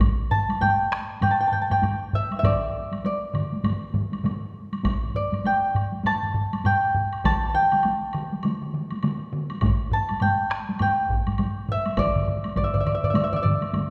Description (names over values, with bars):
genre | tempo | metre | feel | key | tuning
japanese traditional, taiko drum ensemble | 100 BPM | 4/4 | swing 60% on 16ths | unclear | A4 = 440 Hz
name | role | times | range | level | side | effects
taiko ensemble | percussion | 0.0-13.9 s | none | -32 LUFS | equal | none
taiko ensemble | percussion | 0.0-13.9 s | none | -29 LUFS | equal | none
taiko ensemble | percussion | 0.0-12.7 s | none | -30 LUFS | equal | none
woodblock | percussion | 0.0-13.9 s | none | -41 LUFS | equal | none
concert harp | melody | 0.3-13.9 s | D5 to A5 | -26 LUFS | equal | none
taiko ensemble | percussion | 2.4-13.9 s | none | -34 LUFS | equal | none
room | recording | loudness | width
wet scoring stage reverb, RT60 1.8 s | none | -24 LUFS | mono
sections
0.0-13.9 A section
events
speeding up 0.0-13.9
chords
none